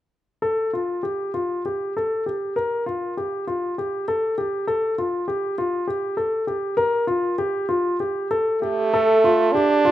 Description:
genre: contemporary instrumental, contemporary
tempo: 199 BPM (eighths)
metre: 7/8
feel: straight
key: G minor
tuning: A4 = 442 Hz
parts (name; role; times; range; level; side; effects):
- warm concert grand piano; arpeggios; 0.4-9.9 s; F4 to Bb4; -21 LUFS; left 1 dB; none
- stopped French horn; melody; 8.6-9.9 s; A3 to D4; -17 LUFS; right 4 dB; none
room: moderate recital hall reverb, RT60 1.5 s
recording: close, detailed microphones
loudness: -20 LUFS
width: side -13 dB against mid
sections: 0.4-8.9 A section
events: none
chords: 0.4 Gsus2; 2.6 Fsus4; 4.7 Gsus2; 6.8 Fsus4; 8.9 Gsus2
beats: | 0.43 0.74 1.05 1.35 1.66 1.96 2.27 | 2.57 2.87 3.17 3.47 3.77 4.08 4.38 | 4.68 4.98 5.28 5.58 5.88 6.18 6.48 | 6.78 7.08 7.38 7.69 8.00 8.31 8.62 | 8.93 9.24 9.55 9.85

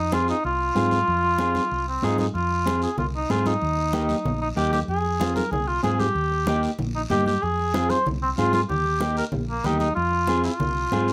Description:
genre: latin, cumbia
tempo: 189 BPM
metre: 4/4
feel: straight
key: F minor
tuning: A4 = 440 Hz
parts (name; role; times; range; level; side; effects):
- mellow cor anglais; melody; 0.0-11.1 s; Bb3 to C5; -27 LUFS; equal; none
- hollow-body short-scale fingered electric bass; bass; 0.0-11.1 s; Bb1 to Ab2; -30 LUFS; equal; none
- mellow electric guitar; accompaniment; 0.1-11.1 s; Bb3 to Ab4; -27 LUFS; equal; none
- congas; percussion; 0.1-11.1 s; none; -33 LUFS; equal; none
- guiro; percussion; 0.1-11.1 s; none; -44 LUFS; equal; none
room: moderate studio ambience, RT60 0.5 s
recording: none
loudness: -23 LUFS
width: mono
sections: 0.0-2.3 A section; 2.3-11.1 B section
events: none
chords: 0.0 Fm; 3.6 Eb; 4.9 Fm; 6.2 Eb; 7.4 Fm; 8.7 Eb; 10.0 Fm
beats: 0.13 0.44 0.76 | 1.08 1.40 1.71 2.03 | 2.35 2.67 2.98 3.30 | 3.62 3.94 4.25 4.57 | 4.89 5.20 5.52 5.84 | 6.16 6.47 6.79 7.11 | 7.43 7.74 8.06 8.38 | 8.70 9.01 9.33 9.65 | 9.97 10.29 10.60 10.92

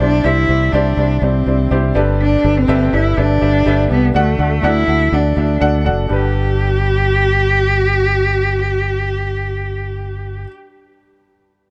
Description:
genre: piano-driven pop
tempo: 123 BPM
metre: 4/4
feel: straight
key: G major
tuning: A4 = 440 Hz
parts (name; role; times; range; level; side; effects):
- warm cello; melody; 0.0-10.5 s; A3 to G4; -19 LUFS; equal; none
- warm baby grand piano; accompaniment; 0.0-11.7 s; G2 to F#5; -22 LUFS; equal; none
- fingered electric bass; bass; 0.0-10.5 s; F#1 to D2; -19 LUFS; equal; none
room: little or no reverb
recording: none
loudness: -15 LUFS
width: mono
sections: 0.0-6.1 A section; 6.1-10.0 B section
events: none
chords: 0.0 Cadd9; 2.0 Gadd9; 4.1 D; 6.1 Gadd9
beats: | 0.25 0.74 1.22 1.71 | 2.20 2.69 3.17 3.66 | 4.15 4.64 5.12 5.61 | 6.10 6.59 7.07 7.56 | 8.05 8.54 9.02 9.51

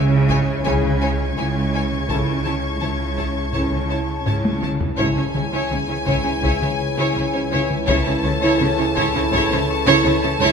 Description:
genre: cinematic, suspense film score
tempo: 83 BPM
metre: 4/4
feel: straight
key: C# minor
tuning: A4 = 438 Hz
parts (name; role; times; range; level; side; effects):
- warbly tape-like pad; sustained chords; 0.0-10.5 s; E4 to A5; -28 LUFS; right 1 dB; chorus, built-in reverb
- rich symphonic cello section; bass; 0.0-10.5 s; C#3; -24 LUFS; right 2 dB; none
- rich symphonic double bass section; bass; 0.0-10.5 s; C#2; -26 LUFS; right 2 dB; none
- analog drone; drone; 0.5-10.5 s; C#2; -29 LUFS; left 1 dB; chorus
- timpani; percussion; 0.0-0.2, 5.0-6.0 s; C#3; -30 LUFS; left 2 dB; none
- concert harp; texture; 0.0-3.1, 8.2-10.5 s; E4 to G#6; -34 LUFS; left 4 dB; none
- rich symphonic violin section; texture; 0.0-4.6 s; C#6 to G#6; -31 LUFS; left 4 dB; none
- warm symphonic violin section; melody; 0.3-10.5 s; G#5 to A5; -28 LUFS; left 4 dB; none
- warm symphonic violin section; second line; 0.3-10.5 s; C#5; -23 LUFS; equal; none
- rich symphonic viola section; accompaniment; 0.3-10.5 s; E4; -26 LUFS; right 3 dB; none
- taiko ensemble; drums; 0.3-10.0 s; none; -26 LUFS; left 2 dB; none
- clear trombone section; sustained chords; 0.6-10.5 s; C#3 to E3; -30 LUFS; right 3 dB; none
- mellow French horn section; sustained chords; 0.7-10.5 s; C#4 to A4; -29 LUFS; left 5 dB; none
room: moderate scoring stage reverb, RT60 1.9 s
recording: none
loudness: -17 LUFS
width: side -6 dB against mid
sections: 0.0-10.5 A section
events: drum fill 4.3-5.0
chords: 0.0 C#m; 2.1 A/C#; 5.0 C#m; 7.9 A/C#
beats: 0.65 1.37 | 2.10 2.82 3.54 4.27 | 4.99 5.71 6.43 7.16 | 7.88 8.60 9.33 10.05

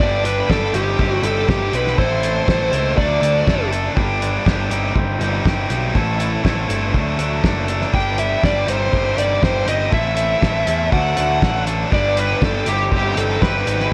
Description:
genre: indie rock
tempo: 121 BPM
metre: 4/4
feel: straight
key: unclear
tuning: A4 = 439 Hz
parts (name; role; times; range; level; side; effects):
- bluesy overdriven lead guitar; melody; 0.0-3.7, 7.9-13.9 s; G4 to G5; -23 LUFS; equal; distortion, analog delay
- heavy high-gain guitar; riff; 0.0-13.9 s; A2 to A4; -24 LUFS; equal; distortion
- fuzz picked electric bass; bass; 0.0-13.9 s; F#1 to E2; -24 LUFS; equal; overdrive
- cloth-damped thuddy drum kit; drums; 0.0-13.9 s; hi-hat, kick drum, snare drum; -22 LUFS; equal; none
room: small room ambience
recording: worn, warbling old tape, cassette tape, warbly pitch drift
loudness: -18 LUFS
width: mono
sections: 0.0-13.9 A section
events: none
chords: 0.0 G; 0.7 Cm/G; 2.0 Am; 3.0 D; 4.0 G; 4.7 Cm/G; 5.9 Am7; 6.9 D; 7.9 G; 8.7 Cm/G; 9.9 Am; 10.9 D; 11.9 G; 12.7 Cm/G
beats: 0.49 0.99 1.48 | 1.98 2.47 2.97 3.47 | 3.96 4.46 4.95 5.45 | 5.95 6.44 6.94 7.43 | 7.93 8.43 8.93 9.42 | 9.92 10.42 10.92 11.42 | 11.91 12.41 12.91 13.41 | 13.91

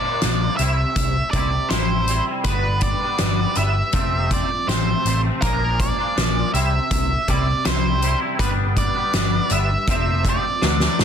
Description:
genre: quiet-loud alternative rock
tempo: 81 BPM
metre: 4/4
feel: straight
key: unclear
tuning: A4 = 440 Hz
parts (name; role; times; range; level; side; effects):
- octave-fuzz lead guitar; melody; 0.0-11.0 s; Bb4 to E5; -24 LUFS; right 2 dB; distortion
- twangy electric guitar; arpeggios; 0.0-11.0 s; F2 to E4; -26 LUFS; left 1 dB; ensemble chorus
- picked electric bass; bass; 0.2-11.0 s; F1 to A2; -22 LUFS; equal; none
- loose indie drum kit; drums; 0.2-11.0 s; hi-hat, kick drum, snare drum; -23 LUFS; left 1 dB; none
room: studio reverb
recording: dense, heavily limited modern master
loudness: -18 LUFS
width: side -8 dB against mid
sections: 0.0-11.0 A section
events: drum fill 10.6-11.0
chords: 0.0 Bb; 0.6 C; 2.5 G; 3.9 F; 5.4 Bb; 6.5 C; 8.4 G; 9.9 F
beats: 0.22 0.97 1.71 | 2.46 3.20 3.94 4.68 | 5.43 6.17 6.91 7.65 | 8.39 9.14 9.88 10.62

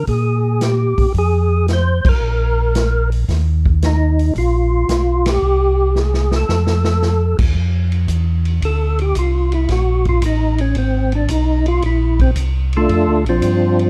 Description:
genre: soul jazz organ trio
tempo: 112 BPM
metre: 4/4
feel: swing 69% on 8ths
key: F major from 7.6 s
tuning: A4 = 440 Hz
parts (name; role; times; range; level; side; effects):
- percussive tonewheel organ; melody; 0.0-13.9 s; F3 to C5; -20 LUFS; equal; slow rotary speaker, overdrive, chorus vibrato
- mellow tonewheel organ; bass; 0.0-13.9 s; Ab1 to Bb2; -18 LUFS; equal; slow rotary speaker
- vintage drum kit; drums; 0.1-13.9 s; crash cymbal, hi-hat, kick drum, ride cymbal, snare drum; -23 LUFS; equal; none
room: little or no reverb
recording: dark, warm production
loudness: -16 LUFS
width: mono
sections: 0.0-7.6 A section; 7.6-13.9 B section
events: band accent 2.0, 5.2; drum fill 6.0-7.0; tonewheel organ solo 7.6-13.9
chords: 0.0 Gm; 1.2 Fm; 2.2 N.C.; 3.3 Ebsus2; 5.4 C5; 6.5 F7; 7.6 F5; 9.7 Aaug; 10.8 Abm6; 11.8 Bbmaj9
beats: 0.08 0.62 | 1.15 1.69 2.22 2.75 | 3.29 3.82 4.36 4.89 | 5.43 5.96 6.49 7.03 | 7.56 8.10 8.63 9.16 | 9.70 10.23 10.77 11.30 | 11.83 12.37 12.90 13.43

